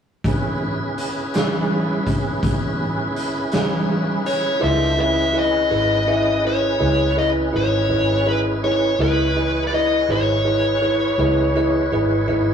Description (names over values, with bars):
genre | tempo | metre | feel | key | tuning
slow blues | 55 BPM (dotted quarters) | 12/8 | straight | C# minor | A4 = 438 Hz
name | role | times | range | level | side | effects
raw garage drum kit | drums | 0.2-4.4 s | hi-hat, kick drum, snare drum | -22 LUFS | equal | none
tonewheel organ | sustained chords | 0.3-12.5 s | C#4 to C#5 | -26 LUFS | right 1 dB | slow rotary speaker, chorus vibrato
dark smooth lead guitar | melody | 4.3-12.5 s | B4 to E5 | -20 LUFS | left 2 dB | overdrive
bell-like tine electric piano | accompaniment | 4.6-12.5 s | E4 to E5 | -20 LUFS | right 1 dB | none
vintage muted fingered electric bass | bass | 4.6-12.5 s | G#1 to C#2 | -24 LUFS | equal | none
room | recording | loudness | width
moderate stone room reverb, RT60 1.2 s | rough rehearsal-room recording, tube saturation, small room reverb | -17 LUFS | side -7 dB against mid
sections
0.2-4.6 A section; 4.6-12.5 B section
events
none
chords
0.2 C#m7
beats
| 0.24 1.34 2.43 3.53 | 4.62 5.72 6.81 7.90 | 9.00 10.09 11.18 12.28